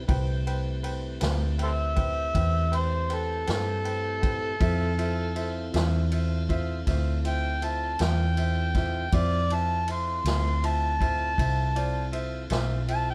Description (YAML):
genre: slow blues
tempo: 53 BPM (dotted quarters)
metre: 12/8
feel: straight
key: unclear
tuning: A4 = 436 Hz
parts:
  - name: tonewheel organ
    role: sustained chords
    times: 0.0-13.1 s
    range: A3 to A4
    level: -41 LUFS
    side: equal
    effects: slow rotary speaker, overdrive
  - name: vintage muted fingered electric bass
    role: bass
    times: 0.0-13.1 s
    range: B1 to G2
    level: -30 LUFS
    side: equal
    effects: none
  - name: bright upright piano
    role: accompaniment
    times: 0.1-13.1 s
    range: F4 to G5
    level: -38 LUFS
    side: equal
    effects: none
  - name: vintage drum kit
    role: drums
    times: 0.1-13.1 s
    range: kick drum, ride cymbal, snare drum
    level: -34 LUFS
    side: equal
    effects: none
  - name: overdriven harmonica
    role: melody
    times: 1.6-13.1 s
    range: A4 to C6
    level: -32 LUFS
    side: equal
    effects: none
room: light reverb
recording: band playing live in one room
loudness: -27 LUFS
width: mono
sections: 0.0-13.1 A section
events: harmonica solo 0.0-13.1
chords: 0.0 Am7; 4.6 Dm7